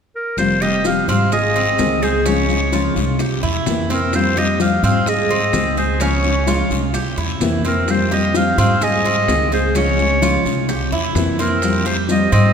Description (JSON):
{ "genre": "latin, Cuban son and guajira", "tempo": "128 BPM", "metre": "4/4", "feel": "straight", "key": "F minor", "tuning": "A4 = 441 Hz", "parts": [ { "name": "clear clarinet", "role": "melody", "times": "0.2-12.5 s", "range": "Bb4 to F5", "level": "-20 LUFS", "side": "equal", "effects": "none" }, { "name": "nylon-string guitar", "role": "accompaniment", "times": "0.4-12.5 s", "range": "C3 to Ab4", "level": "-20 LUFS", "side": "left 2 dB", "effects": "none" }, { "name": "upright bass", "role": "bass", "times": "0.4-12.5 s", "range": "F1 to Ab2", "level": "-21 LUFS", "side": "right 1 dB", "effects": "none" }, { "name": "bongos", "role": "percussion", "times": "0.4-12.3 s", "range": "none", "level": "-28 LUFS", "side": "left 4 dB", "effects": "none" }, { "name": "guiro", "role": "percussion", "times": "0.4-12.5 s", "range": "none", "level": "-31 LUFS", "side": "left 3 dB", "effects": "none" }, { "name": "maracas", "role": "percussion", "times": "0.4-12.5 s", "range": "none", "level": "-34 LUFS", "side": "right 5 dB", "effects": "none" }, { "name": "Cuban tres", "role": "arpeggios", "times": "0.6-12.5 s", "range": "C4 to Ab4", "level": "-23 LUFS", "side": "right 3 dB", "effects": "none" } ], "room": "wet church reverb, RT60 3.4 s", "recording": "recorded in a church or concert hall", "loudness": "-15 LUFS", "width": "side -7 dB against mid", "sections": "0.4-12.5 A section", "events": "none", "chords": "0.4 Fsus2; 1.3 Ab; 2.3 Db; 3.2 C7; 4.1 Fsus2; 5.1 Ab; 6.0 Db; 6.9 C7; 7.9 Fsus2; 8.8 Ab; 9.8 Db; 10.7 C7; 11.6 Fsus2", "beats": "| 0.38 0.85 1.32 1.79 | 2.25 2.73 3.19 3.66 | 4.13 4.60 5.07 5.54 | 6.01 6.47 6.94 7.41 | 7.88 8.35 8.82 9.29 | 9.75 10.22 10.69 11.16 | 11.62 12.09" }